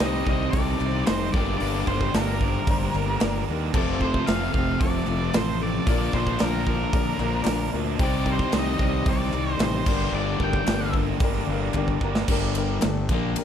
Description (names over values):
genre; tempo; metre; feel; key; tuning
classic rock; 112 BPM; 4/4; straight; G minor; A4 = 440 Hz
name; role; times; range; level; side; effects
octave-fuzz lead guitar; melody; 0.0-10.9 s; Bb4 to G5; -30 LUFS; right 1 dB; distortion, slapback echo
warm grand piano; accompaniment; 0.0-13.4 s; C4 to Bb5; -33 LUFS; left 6 dB; none
crunchy overdriven guitar; riff; 0.0-13.4 s; F2 to G4; -29 LUFS; left 11 dB; none
distorted electric guitar; riff; 0.0-13.4 s; F2 to Eb4; -30 LUFS; right 13 dB; distortion
fuzz fingered electric bass; bass; 0.0-13.4 s; F1 to Eb2; -28 LUFS; equal; overdrive
big rock drum kit; drums; 0.0-13.4 s; crash cymbal, hi-hat, kick drum, ride cymbal, snare drum; -26 LUFS; right 1 dB; none
group handclap; percussion; 0.8-12.9 s; none; -40 LUFS; left 12 dB; none
room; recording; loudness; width
light reverb, small room ambience; none; -21 LUFS; side -9 dB against mid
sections
0.0-12.3 A section; 12.3-13.4 B section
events
grand piano fill 11.2-12.3; drum fill 11.7-12.3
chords
0.0 Cm; 1.3 Gm; 3.7 F; 5.9 Bb; 8.0 Cm; 9.9 Gm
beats
0.00 0.53 1.07 | 1.60 2.13 2.67 3.20 | 3.73 4.26 4.79 5.33 | 5.86 6.39 6.92 7.46 | 7.99 8.53 9.06 9.60 | 10.13 10.67 11.21 11.74 | 12.28 12.82 13.36